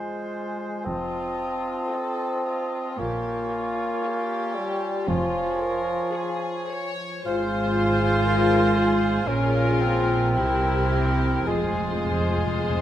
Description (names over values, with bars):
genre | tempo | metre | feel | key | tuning
classical, slow romantic movement for symphony orchestra | 52-61 BPM | 4/4 | rubato | F minor | A4 = 439 Hz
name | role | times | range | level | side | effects
warm studio violin section | melody | 0.0-12.8 s | Bb4 to Eb5 | -34 LUFS | left 4 dB | none
clear clarinet | second line | 0.0-12.8 s | E4 to F4 | -34 LUFS | left 2 dB | none
mellow hollow concert flute | second line | 0.0-12.8 s | G5 to A5 | -35 LUFS | left 1 dB | none
warm oboe | second line | 0.0-12.8 s | Ab4 to Eb5 | -34 LUFS | right 1 dB | none
warm bassoon | accompaniment | 0.0-12.8 s | F3 to F4 | -28 LUFS | right 2 dB | none
warm studio viola section | accompaniment | 0.0-12.8 s | E4 to A4 | -30 LUFS | left 4 dB | none
dark French horn section | sustained chords | 0.0-12.8 s | F3 to F4 | -31 LUFS | left 3 dB | none
timpani | percussion | 0.0-0.3, 11.5-12.8 s | F2 | -31 LUFS | left 1 dB | none
warm studio violin section | second line | 0.9-12.8 s | E4 to Db5 | -34 LUFS | left 3 dB | none
warm studio cello section | bass | 0.9-12.8 s | F2 to C3 | -28 LUFS | right 2 dB | none
warm studio double bass section | bass | 0.9-12.8 s | F1 to C2 | -28 LUFS | right 2 dB | none
room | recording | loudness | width
moderate scoring stage reverb, RT60 2.1 s | close, detailed microphones | -22 LUFS | side -11 dB against mid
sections
0.0-12.8 A section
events
timpani fill 11.5-12.8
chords
0.0 Fm; 0.9 F7; 3.0 Bbm7; 7.3 Fm/Ab; 9.3 Bbm7; 10.4 C7; 11.5 Fm